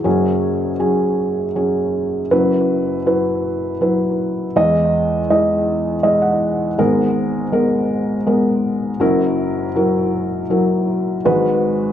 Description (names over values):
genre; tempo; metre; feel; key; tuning
folk; 80 BPM; 3/4; straight; unclear; A4 = 440 Hz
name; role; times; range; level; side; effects
felt-muted upright piano; solo; 0.0-11.9 s; F#1 to F#5; -15 LUFS; equal; tape echo
room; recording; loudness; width
moderate large studio reverb, RT60 1.3 s; worn, warbling old tape, cassette tape, warbly pitch drift; -15 LUFS; side -10 dB against mid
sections
0.0-2.3 A section; 2.3-11.3 B section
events
none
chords
0.1 F#sus2; 2.3 F#7sus4; 4.6 Emaj7; 6.8 G#madd9; 9.0 F#7; 11.3 G#m7